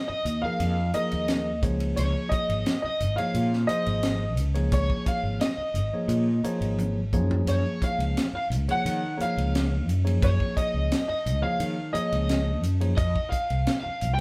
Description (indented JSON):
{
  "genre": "electric jazz fusion",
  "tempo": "87 BPM",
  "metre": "4/4",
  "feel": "straight",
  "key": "unclear",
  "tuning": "A4 = 440 Hz",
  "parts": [
    { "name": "warm baby grand piano", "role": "melody", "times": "0.0-14.2 s", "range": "Db5 to G5", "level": "-34 LUFS", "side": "equal", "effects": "none" },
    { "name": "overdriven semi-hollow guitar", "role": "second line", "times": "0.0-14.2 s", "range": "Db5 to G5", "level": "-36 LUFS", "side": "equal", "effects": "none" },
    { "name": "fretless electric bass", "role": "bass", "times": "0.1-14.2 s", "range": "Ab1 to Eb3", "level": "-29 LUFS", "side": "equal", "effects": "none" },
    { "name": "tight funk drum kit", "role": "drums", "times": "0.3-14.2 s", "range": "hi-hat, kick drum, ride cymbal, snare drum, toms", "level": "-33 LUFS", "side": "equal", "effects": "none" },
    { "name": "barky tine electric piano", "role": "accompaniment", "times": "0.4-14.2 s", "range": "F3 to Db5", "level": "-33 LUFS", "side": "equal", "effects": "none" }
  ],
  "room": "light reverb",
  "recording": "band playing live in one room",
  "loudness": "-26 LUFS",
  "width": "mono",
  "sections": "0.0-14.2 A section",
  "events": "drum fill 6.8-7.5",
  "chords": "0.0 Absus2; 1.6 Db69; 7.1 Gbmaj9; 13.0 F7(no3)"
}